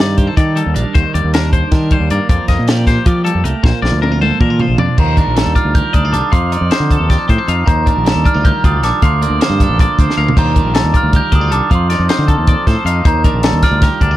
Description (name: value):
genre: math rock and midwest emo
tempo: 312 BPM (eighths)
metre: 7/8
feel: straight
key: unclear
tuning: A4 = 442 Hz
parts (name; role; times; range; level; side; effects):
- twelve-string electric guitar; accompaniment; 0.0-14.2 s; Bb2 to C5; -21 LUFS; right 6 dB; none
- twangy electric guitar; arpeggios; 0.0-14.2 s; A4 to F5; -21 LUFS; left 8 dB; none
- growling fingered electric bass; bass; 0.0-14.2 s; A1 to F3; -16 LUFS; equal; overdrive
- compact cocktail drum kit; drums; 0.0-14.1 s; crash cymbal, hi-hat, kick drum, snare drum, toms; -14 LUFS; equal; none
- glockenspiel with rubber mallets; melody; 5.0-14.2 s; Bb5 to G6; -18 LUFS; right 2 dB; digital delay
room: little or no reverb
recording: dark, warm production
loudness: -11 LUFS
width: side -14 dB against mid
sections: 0.0-5.0 A section; 5.0-14.2 B section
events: drum fill 3.6-5.0, 10.1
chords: 0.0 Ebmaj7; 0.9 Cm9/Eb; 2.3 F9sus4; 3.6 Bbmaj7; 5.0 Ebmaj9#11; 6.3 F7; 7.7 Ebmaj9#11; 9.0 Bbmaj7/D; 10.4 Ebmaj9#11; 11.7 F7; 13.1 Ebmaj9#11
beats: 0.18 0.37 0.56 0.76 | 0.95 1.14 1.33 1.53 1.72 1.91 2.10 | 2.29 2.49 2.68 2.87 3.06 3.25 3.45 | 3.64 3.83 4.02 4.21 4.41 4.60 4.79 | 4.98 5.17 5.37 5.56 5.75 5.94 6.14 | 6.33 6.52 6.71 6.91 7.10 7.29 7.48 | 7.68 7.87 8.06 8.25 8.45 8.64 8.83 | 9.02 9.21 9.41 9.60 9.79 9.98 10.18 | 10.37 10.56 10.75 10.94 11.13 11.33 11.52 | 11.71 11.90 12.10 12.29 12.48 12.67 12.86 | 13.05 13.25 13.44 13.63 13.82 14.01